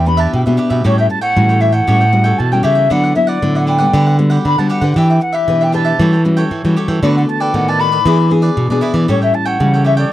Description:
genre	samba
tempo	117 BPM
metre	4/4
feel	straight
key	unclear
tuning	A4 = 440 Hz
part	baroque flute	melody	0.0-10.1 s	C#5 to B5	-16 LUFS	left 1 dB	none
part	cavaquinho	accompaniment	0.0-10.1 s	D4 to G5	-22 LUFS	right 4 dB	none
part	nylon-string guitar	accompaniment	0.0-10.1 s	A2 to B4	-18 LUFS	left 2 dB	none
part	nylon-string guitar	bass	0.0-10.0 s	E2 to E3	-14 LUFS	right 1 dB	none
room	light reverb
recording	dry, close 1970s-style studio recording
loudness	-11 LUFS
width	side -14 dB against mid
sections	0.0-10.1 A section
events	none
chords	0.0 Em7; 0.9 A13; 2.9 D69; 3.9 Gmaj7/D; 5.0 Em7; 6.0 A6/E; 7.0 D6; 8.1 E7; 9.1 A7

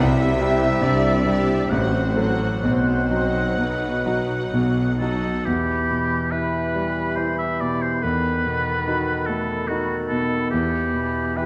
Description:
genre	classical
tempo	62-73 BPM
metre	3/4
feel	rubato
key	E minor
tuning	A4 = 439 Hz
part	clear concert grand piano	melody	0.0-11.5 s	A1 to A4	-25 LUFS	equal	none
part	dark clarinet	second line	0.0-11.5 s	G4 to D#5	-36 LUFS	equal	none
part	mellow small flute group	second line	0.0-11.5 s	B4 to B5	-35 LUFS	equal	none
part	rich studio violin section	second line	0.0-4.5 s	B4 to E5	-38 LUFS	equal	none
part	warm oboe	second line	0.0-11.5 s	F#4 to F#5	-29 LUFS	equal	none
part	mellow bassoon	accompaniment	0.0-11.5 s	D#3 to G3	-33 LUFS	equal	none
part	warm French horn section	sustained chords	0.0-4.5 s	B3 to E4	-32 LUFS	equal	none
part	mellow tuba	bass	0.0-5.4 s	A1 to C2	-31 LUFS	equal	none
part	rich symphonic double bass section	bass	0.0-5.4 s	A1 to C2	-34 LUFS	equal	none
part	warm symphonic cello section	bass	0.0-5.4 s	A2 to C3	-33 LUFS	equal	none
part	clear symphonic violin section	melody	0.4-5.5 s	E5 to F#5	-40 LUFS	equal	none
part	rich symphonic viola section	accompaniment	0.4-5.5 s	F#3 to G4	-34 LUFS	equal	none
room	moderate concert hall reverb, RT60 2.0 s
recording	none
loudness	-22 LUFS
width	mono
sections	0.0-5.5 A section; 5.5-11.5 B section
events	none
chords	0.0 C; 1.7 F#dim/A; 2.6 B; 5.5 Em; 8.0 B7/E; 10.5 Em

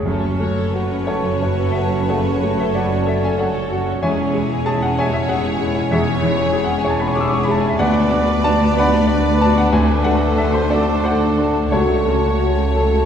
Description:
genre	classical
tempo	62 BPM (dotted quarters)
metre	12/8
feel	uneven beats, rubato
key	F# minor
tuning	A4 = 442 Hz
part	bright baby grand piano	melody	0.0-13.1 s	C#2 to E6	-20 LUFS	left 1 dB	none
part	rich symphonic cello section	bass	0.0-13.1 s	C#2 to F#2	-25 LUFS	equal	none
part	rich symphonic double bass section	bass	0.0-13.1 s	E1 to D2	-22 LUFS	right 2 dB	none
part	bright symphonic violin section	melody	0.1-13.1 s	C5 to D5	-31 LUFS	left 2 dB	none
part	bright large flute ensemble	second line	0.1-13.1 s	G#5 to B5	-30 LUFS	left 2 dB	none
part	dark cor anglais	second line	0.1-13.1 s	A4 to D5	-28 LUFS	right 3 dB	none
part	mellow clarinet	second line	0.1-13.1 s	D4 to F#4	-27 LUFS	equal	none
part	warm symphonic violin section	second line	0.1-13.1 s	G#4 to C#5	-28 LUFS	left 2 dB	none
part	rich symphonic viola section	accompaniment	0.1-13.1 s	F#3 to B4	-27 LUFS	right 1 dB	none
part	mellow French horn section	sustained chords	0.1-13.1 s	G#3 to F#4	-25 LUFS	left 3 dB	none
room	wet scoring stage reverb, RT60 2.1 s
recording	heard from further back in the room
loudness	-15 LUFS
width	side -8 dB against mid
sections	0.1-13.1 A section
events	none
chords	0.1 F#m; 4.0 C#m/E; 7.8 Bm/D; 9.7 D7; 11.7 F#m/C#

